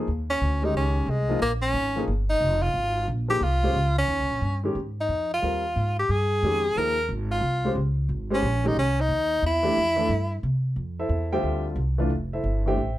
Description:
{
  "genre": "jazz",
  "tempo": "180 BPM",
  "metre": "4/4",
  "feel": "swing 63% on 8ths",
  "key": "Eb mixolydian",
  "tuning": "A4 = 440 Hz",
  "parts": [
    { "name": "warm grand piano", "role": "accompaniment", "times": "0.0-13.0 s", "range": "D3 to G5", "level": "-28 LUFS", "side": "left 1 dB", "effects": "none" },
    { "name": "upright bass", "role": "bass", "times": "0.0-13.0 s", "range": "F1 to C3", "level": "-26 LUFS", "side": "equal", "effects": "none" },
    { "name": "bright tenor saxophone", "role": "melody", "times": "0.3-10.4 s", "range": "Ab3 to Bb4", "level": "-24 LUFS", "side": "equal", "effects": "none" }
  ],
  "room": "light reverb",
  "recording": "none",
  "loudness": "-22 LUFS",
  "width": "side -15 dB against mid",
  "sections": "0.1-10.8 A section; 10.8-13.0 B section",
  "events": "none",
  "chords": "0.1 Eb13sus4; 9.4 C; 10.8 Fmaj9"
}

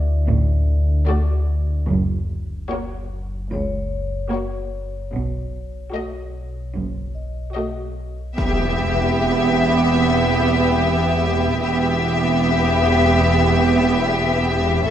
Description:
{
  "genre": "cinematic",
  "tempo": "74 BPM",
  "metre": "4/4",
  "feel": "straight",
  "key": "E minor from 8.4 s",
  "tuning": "A4 = 443 Hz",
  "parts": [
    { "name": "rich studio violin section", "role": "melody", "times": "0.0-14.9 s", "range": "C#5 to E5", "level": "-23 LUFS", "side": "left 5 dB", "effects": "none" },
    { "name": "warm symphonic viola section", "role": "accompaniment", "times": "0.0-14.9 s", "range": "A3 to F#4", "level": "-23 LUFS", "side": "right 3 dB", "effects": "none" },
    { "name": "deep rumbling drone", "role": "drone", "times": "0.0-14.9 s", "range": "F#1 to E2", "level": "-24 LUFS", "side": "equal", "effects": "built-in reverb" },
    { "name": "vibraphone with medium mallets", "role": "texture", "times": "0.0-14.9 s", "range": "E4 to E5", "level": "-34 LUFS", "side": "equal", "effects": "none" },
    { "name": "rich studio cello section", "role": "bass", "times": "0.3-14.9 s", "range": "C#2 to B2", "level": "-24 LUFS", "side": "right 2 dB", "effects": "none" },
    { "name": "rich studio double bass section", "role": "bass", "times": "0.3-14.9 s", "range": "E1 to C#2", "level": "-25 LUFS", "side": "right 2 dB", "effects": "none" },
    { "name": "warm symphonic violin section", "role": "second line", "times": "8.4-14.9 s", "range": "G4 to A4", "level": "-23 LUFS", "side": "left 1 dB", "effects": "none" },
    { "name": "impact", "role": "sound effects", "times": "8.4-11.6 s", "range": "none", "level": "-26 LUFS", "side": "equal", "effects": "none" }
  ],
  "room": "moderate scoring stage reverb, RT60 1.6 s",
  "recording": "none",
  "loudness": "-17 LUFS",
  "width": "side -10 dB against mid",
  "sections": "0.0-8.4 A section; 8.4-14.9 B section",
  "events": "impact 8.4-11.6",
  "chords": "0.0 D; 1.9 F#; 5.1 B7; 8.4 Em"
}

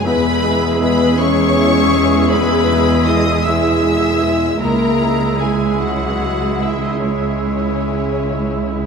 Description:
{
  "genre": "cinematic, emotional film score for orchestra",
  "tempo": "48-54 BPM (dotted quarters)",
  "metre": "6/8",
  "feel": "rubato",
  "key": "unclear",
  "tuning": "A4 = 440 Hz",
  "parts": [
    { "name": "rich studio violin section", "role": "melody", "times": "0.0-8.9 s", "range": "C#5 to E6", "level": "-23 LUFS", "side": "left 4 dB", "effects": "none" },
    { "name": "warm studio violin section", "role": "second line", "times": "0.0-8.9 s", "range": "C#4 to E5", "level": "-23 LUFS", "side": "left 3 dB", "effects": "none" },
    { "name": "warm concert grand piano", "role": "accompaniment", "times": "0.0-8.9 s", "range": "C#2 to G#4", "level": "-22 LUFS", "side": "equal", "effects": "none" },
    { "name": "warm studio viola section", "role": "accompaniment", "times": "0.0-8.9 s", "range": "G#3 to G#4", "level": "-24 LUFS", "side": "right 1 dB", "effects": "none" },
    { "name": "rich studio double bass section", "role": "bass", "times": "0.0-8.9 s", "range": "E1 to C#2", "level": "-23 LUFS", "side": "right 5 dB", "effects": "none" },
    { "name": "warm studio cello section", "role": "bass", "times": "0.0-8.9 s", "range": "C#2 to E2", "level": "-22 LUFS", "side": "right 2 dB", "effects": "none" },
    { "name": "bright clarinet", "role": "second line", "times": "0.1-8.9 s", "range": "G#4", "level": "-25 LUFS", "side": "right 4 dB", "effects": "none" },
    { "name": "warm oboe", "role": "second line", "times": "0.1-8.9 s", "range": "E5", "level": "-26 LUFS", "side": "right 1 dB", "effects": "none" },
    { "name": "mellow French horn section", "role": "sustained chords", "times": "0.1-8.9 s", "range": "C#3 to E4", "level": "-19 LUFS", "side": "left 3 dB", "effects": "none" }
  ],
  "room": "wet scoring stage reverb, RT60 1.7 s",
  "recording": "minimal, uncompressed stereo recording",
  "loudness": "-13 LUFS",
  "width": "side -6 dB against mid",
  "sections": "0.0-8.9 A section",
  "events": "none",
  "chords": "0.1 E; 4.6 C#m"
}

